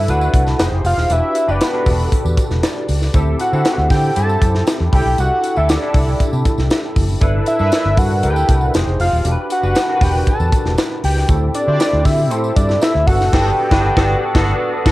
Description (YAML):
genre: polished 1980s jazz-funk pop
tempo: 118 BPM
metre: 4/4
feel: straight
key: G major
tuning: A4 = 440 Hz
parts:
  - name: fat analog lead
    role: melody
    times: 0.0-14.9 s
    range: B4 to A5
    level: -19 LUFS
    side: equal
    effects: chorus, cassette tape
  - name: barky tine electric piano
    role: accompaniment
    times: 0.0-14.9 s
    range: Bb3 to D5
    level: -21 LUFS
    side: equal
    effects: overdrive, ensemble chorus, cassette tape
  - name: vintage muted fingered electric bass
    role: bass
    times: 0.0-14.9 s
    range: Eb1 to D3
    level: -17 LUFS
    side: equal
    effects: none
  - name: crisp fusion drum kit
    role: drums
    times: 0.1-14.9 s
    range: crash cymbal, hi-hat, kick drum, snare drum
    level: -17 LUFS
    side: equal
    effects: cassette tape
  - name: tambourine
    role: percussion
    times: 0.1-12.9 s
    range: none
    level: -38 LUFS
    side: right 5 dB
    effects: none
room: light reverb, studio reverb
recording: home recording on cassette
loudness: -13 LUFS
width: side -17 dB against mid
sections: 0.0-14.9 A section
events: tine electric piano fill 2.4-3.1; band accent 13.3-14.9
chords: 0.0 G69; 0.6 Fm9; 1.1 Em9; 3.1 D7sus4; 4.9 C69; 7.2 G69; 8.7 Fm9; 9.3 Em9; 11.3 D7sus4; 13.1 Gmaj9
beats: 0.08 0.59 | 1.10 1.61 2.12 2.63 | 3.14 3.65 4.16 4.67 | 5.18 5.69 6.20 6.71 | 7.22 7.73 8.24 8.75 | 9.26 9.76 10.27 10.78 | 11.29 11.80 12.31 12.82 | 13.33 13.84 14.35 14.85